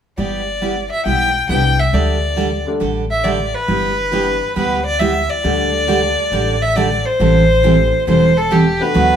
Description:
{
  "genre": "country, western swing",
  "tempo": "137 BPM",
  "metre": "4/4",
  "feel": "swing 68% on 8ths",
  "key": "G major",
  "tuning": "A4 = 440 Hz",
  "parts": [
    { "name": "clear fiddle", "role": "melody", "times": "0.2-9.2 s", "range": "G4 to G5", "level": "-17 LUFS", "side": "left 1 dB", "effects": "none" },
    { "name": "picked steel-string acoustic guitar", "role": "accompaniment", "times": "0.2-9.2 s", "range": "D3 to A4", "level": "-18 LUFS", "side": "right 3 dB", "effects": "none" },
    { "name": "upright bass", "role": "bass", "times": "0.2-9.2 s", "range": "E1 to D2", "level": "-21 LUFS", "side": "left 1 dB", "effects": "none" },
    { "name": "clear upright piano", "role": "accompaniment", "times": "1.5-8.9 s", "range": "D3 to G4", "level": "-24 LUFS", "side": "left 2 dB", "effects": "none" }
  ],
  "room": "wet large studio reverb, RT60 1.1 s",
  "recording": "band playing live in one room",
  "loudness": "-13 LUFS",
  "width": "side -8 dB against mid",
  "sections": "0.2-3.7 A section; 3.7-9.2 B section",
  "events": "none",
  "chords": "0.2 G6; 1.9 Dsus4; 3.7 G6; 5.4 Dsus4; 7.2 Am7",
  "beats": "| 0.18 0.62 1.06 1.50 | 1.94 2.37 2.81 3.25 | 3.69 4.13 4.57 5.00 | 5.44 5.88 6.32 6.76 | 7.20 7.63 8.07 8.51 | 8.95"
}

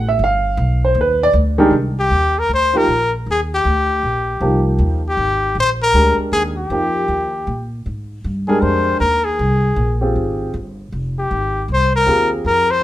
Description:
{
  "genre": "modal jazz",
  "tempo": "157 BPM",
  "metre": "4/4",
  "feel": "swing 63% on 8ths",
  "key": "C minor",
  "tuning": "A4 = 440 Hz",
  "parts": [
    { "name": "warm grand piano", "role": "accompaniment", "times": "0.0-12.7 s", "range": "D#3 to F5", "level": "-18 LUFS", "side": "right 1 dB", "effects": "none" },
    { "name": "upright bass", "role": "bass", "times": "0.0-12.8 s", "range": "F1 to Bb2", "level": "-20 LUFS", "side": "equal", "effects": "none" },
    { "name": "clear trumpet", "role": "melody", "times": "2.0-12.8 s", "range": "G4 to C5", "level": "-16 LUFS", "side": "left 2 dB", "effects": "none" }
  ],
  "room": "moderate club reverb, RT60 0.9 s",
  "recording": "minimal, uncompressed stereo recording",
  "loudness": "-14 LUFS",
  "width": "side -14 dB against mid",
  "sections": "0.0-1.7 A section; 1.7-12.8 B section",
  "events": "none",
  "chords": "0.2 G7; 1.7 Cm11 (rootless); 7.9 Fm11",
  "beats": "| 0.20 0.59 0.97 1.35 | 1.73 2.12 2.50 2.88 | 3.27 3.65 4.03 4.41 | 4.80 5.18 5.56 5.95 | 6.33 6.71 7.09 7.48 | 7.86 8.24 8.63 9.01 | 9.39 9.78 10.16 10.54 | 10.92 11.31 11.69 12.07 | 12.45"
}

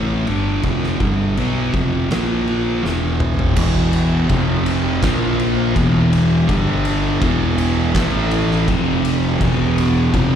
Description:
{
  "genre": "stoner and doom metal",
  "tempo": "82 BPM",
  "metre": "4/4",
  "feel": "straight",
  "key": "unclear",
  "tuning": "A4 = 441 Hz",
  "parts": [
    { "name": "string machine, full ensemble", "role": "sustained chords", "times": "0.0-10.4 s", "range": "E3 to F#5", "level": "-32 LUFS", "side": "equal", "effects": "none" },
    { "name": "thick fuzz guitar", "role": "riff", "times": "0.0-10.4 s", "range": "E2 to B3", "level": "-21 LUFS", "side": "left 7 dB", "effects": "distortion" },
    { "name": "thick fuzz guitar", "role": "riff", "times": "0.0-10.4 s", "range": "E2 to B3", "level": "-21 LUFS", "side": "right 9 dB", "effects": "distortion" },
    { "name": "fuzz fingered electric bass", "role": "bass", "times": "0.0-10.4 s", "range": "E1 to B1", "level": "-22 LUFS", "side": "equal", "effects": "overdrive, tube saturation" },
    { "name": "oversized low-tuned drum kit", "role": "drums", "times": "0.3-10.3 s", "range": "crash cymbal, kick drum, ride cymbal, snare drum, toms", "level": "-22 LUFS", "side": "equal", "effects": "none" },
    { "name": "crunchy overdriven guitar", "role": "riff", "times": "3.6-10.4 s", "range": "E2 to A#3", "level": "-23 LUFS", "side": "equal", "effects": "none" }
  ],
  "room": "light reverb",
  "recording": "live gig heard through the venue's PA, recital hall reverb",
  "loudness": "-15 LUFS",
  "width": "side -8 dB against mid",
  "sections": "0.0-3.6 A section; 3.6-10.4 B section",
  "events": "drum fill 2.8-3.6",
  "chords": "0.0 Em; 2.1 A#5; 2.8 E5; 4.3 F5; 5.0 A#5; 5.8 E5; 6.5 G5; 7.2 E5; 8.0 A5; 8.7 F5; 9.4 E5",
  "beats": "| 0.65 1.38 2.11 2.84 | 3.57 4.30 5.03 5.76 | 6.49 7.22 7.95 8.68 | 9.41 10.14"
}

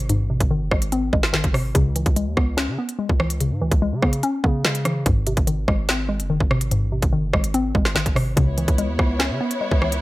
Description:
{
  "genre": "hip hop, drill",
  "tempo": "145 BPM",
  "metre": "4/4",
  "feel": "half-time",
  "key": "C# minor",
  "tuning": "A4 = 437 Hz",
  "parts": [
    { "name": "hollow square pluck", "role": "accompaniment", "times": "0.0-10.0 s", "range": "G#2 to C#4", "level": "-23 LUFS", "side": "left 1 dB", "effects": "chorus, low-pass filter" },
    { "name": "long sustained 808-style bass", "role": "bass", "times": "0.0-10.0 s", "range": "F#1 to C#3", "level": "-25 LUFS", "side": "equal", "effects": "none" },
    { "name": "drill drum kit", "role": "drums", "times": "0.1-10.0 s", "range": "hi-hat, kick drum, rim click, snare drum", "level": "-21 LUFS", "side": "equal", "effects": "none" },
    { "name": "warm symphonic string section", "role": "sustained chords", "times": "8.4-10.0 s", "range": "B3 to C#5", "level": "-26 LUFS", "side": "left 1 dB", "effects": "none" }
  ],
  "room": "little or no reverb",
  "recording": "none",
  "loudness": "-18 LUFS",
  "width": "side -18 dB against mid",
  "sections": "0.0-10.0 A section",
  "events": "filter sweep on synth pluck 0.0-8.4",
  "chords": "0.0 G#; 1.7 C#m7; 5.1 G#; 8.4 C#m7",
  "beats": "| 0.09 0.51 0.92 1.33 | 1.75 2.16 2.58 2.99 | 3.40 3.82 4.23 4.65 | 5.06 5.47 5.89 6.30 | 6.71 7.13 7.54 7.96 | 8.37 8.78 9.20 9.61"
}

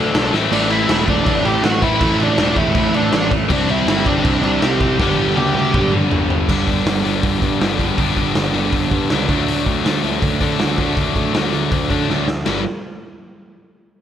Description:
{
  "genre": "punk rock",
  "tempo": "161 BPM",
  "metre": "4/4",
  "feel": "straight",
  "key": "G major",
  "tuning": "A4 = 437 Hz",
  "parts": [
    { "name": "bluesy overdriven lead guitar", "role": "melody", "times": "0.0-5.9 s", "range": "D4 to A5", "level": "-20 LUFS", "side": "right 1 dB", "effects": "distortion" },
    { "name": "cranked stack guitar", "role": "riff", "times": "0.0-12.6 s", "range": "G2 to E4", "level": "-21 LUFS", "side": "left 9 dB", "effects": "overdrive" },
    { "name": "cranked stack guitar", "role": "riff", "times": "0.0-6.5 s", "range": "G2 to D4", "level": "-23 LUFS", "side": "left 1 dB", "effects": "overdrive" },
    { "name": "fuzz picked electric bass", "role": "bass", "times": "0.0-12.6 s", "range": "E1 to D3", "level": "-23 LUFS", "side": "equal", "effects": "overdrive" },
    { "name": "raw garage drum kit", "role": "drums", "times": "0.1-12.6 s", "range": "crash cymbal, hi-hat, kick drum, ride cymbal, snare drum, splash cymbal, toms", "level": "-20 LUFS", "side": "equal", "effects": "none" },
    { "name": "sludgy distorted guitar", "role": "riff", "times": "0.5-12.6 s", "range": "G2 to D4", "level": "-23 LUFS", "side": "right 13 dB", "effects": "overdrive" }
  ],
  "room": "little or no reverb",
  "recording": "none",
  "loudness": "-14 LUFS",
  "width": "side -10 dB against mid",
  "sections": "0.0-6.5 A section; 6.5-12.5 B section; 12.5-14.0 C section",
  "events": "drum fill 0.3, 5.0-6.5, 12.1-12.5",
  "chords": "0.3 Am; 3.5 C; 5.0 G; 9.3 D; 12.5 G5",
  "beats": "0.15 | 0.53 0.90 1.27 1.64 | 2.02 2.39 2.76 3.13 | 3.50 3.88 4.25 4.62 | 4.99 5.37 5.74 6.11 | 6.48 6.86 7.23 7.61 | 7.98 8.35 8.73 9.10 | 9.48 9.85 10.22 10.60 | 10.97 11.35 11.72 12.10 | 12.47"
}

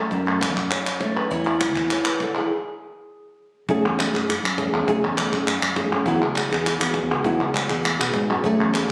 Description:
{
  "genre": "flamenco",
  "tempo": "202 BPM",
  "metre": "4/4",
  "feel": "straight",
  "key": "F# minor",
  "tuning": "A4 = 441 Hz",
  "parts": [
    { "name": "flamenco guitar", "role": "melody", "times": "0.0-8.9 s", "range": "F#2 to E5", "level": "-26 LUFS", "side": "equal", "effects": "none" },
    { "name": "fingered electric bass", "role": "bass", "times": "0.1-8.9 s", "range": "C#2 to B2", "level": "-31 LUFS", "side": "equal", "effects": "none" },
    { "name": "cajon", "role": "percussion", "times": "0.1-8.9 s", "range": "none", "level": "-34 LUFS", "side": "equal", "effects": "none" },
    { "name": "palmas hand claps", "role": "percussion", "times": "0.3-8.9 s", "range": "none", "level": "-27 LUFS", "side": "equal", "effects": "none" }
  ],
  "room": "moderate stone room reverb, RT60 1.3 s",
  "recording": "recorded on a phone in the room, studio reverb",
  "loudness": "-22 LUFS",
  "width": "mono",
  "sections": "0.0-3.7 A section; 3.7-8.9 B section",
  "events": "stop 2.5-3.7",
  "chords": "0.0 F#m; 1.3 C#m; 2.5 N.C.; 3.7 F#madd9; 6.1 Eadd9",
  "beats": "| 0.12 0.42 0.72 1.01 | 1.31 1.61 1.91 2.21 | 2.50 2.80 3.10 3.40 | 3.69 3.99 4.29 4.58 | 4.88 5.18 5.47 5.77 | 6.07 6.37 6.66 6.96 | 7.25 7.55 7.85 8.15 | 8.44 8.74"
}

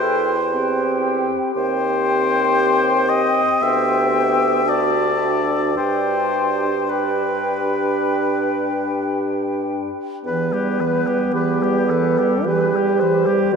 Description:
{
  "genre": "classical, slow romantic movement for wind quintet",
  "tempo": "52-59 BPM",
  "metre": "4/4",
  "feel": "rubato",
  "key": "G major, E minor from 10.3 s",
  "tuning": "A4 = 442 Hz",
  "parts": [
    { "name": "mellow concert flute", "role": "melody", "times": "0.0-13.6 s", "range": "G4 to A5", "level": "-24 LUFS", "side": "left 5 dB", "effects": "none" },
    { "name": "warm oboe", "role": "second line", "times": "0.0-13.6 s", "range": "G4 to E5", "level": "-22 LUFS", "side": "left 2 dB", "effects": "none" },
    { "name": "clear French horn", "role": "accompaniment", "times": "0.0-13.6 s", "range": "B3 to G4", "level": "-24 LUFS", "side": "equal", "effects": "none" },
    { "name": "mellow clarinet", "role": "accompaniment", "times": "0.0-13.6 s", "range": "E3 to A4", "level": "-24 LUFS", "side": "right 3 dB", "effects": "none" },
    { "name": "mellow bassoon", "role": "bass", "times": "0.0-13.6 s", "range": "D2 to G2", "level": "-24 LUFS", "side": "right 5 dB", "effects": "none" }
  ],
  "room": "wet cathedral reverb, RT60 6.3 s",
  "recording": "in a vast, echoing space",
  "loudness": "-17 LUFS",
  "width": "side -6 dB against mid",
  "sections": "0.0-10.3 A section; 10.3-13.6 B section",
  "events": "none",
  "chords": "0.0 C/E; 1.6 Cm/Eb; 3.6 G/D; 4.7 D; 5.8 G; 10.3 Em",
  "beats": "0.53 | 1.56 2.58 3.61 4.66 | 5.76 6.88 8.03 9.15 | 10.26 11.34 12.46 13.53"
}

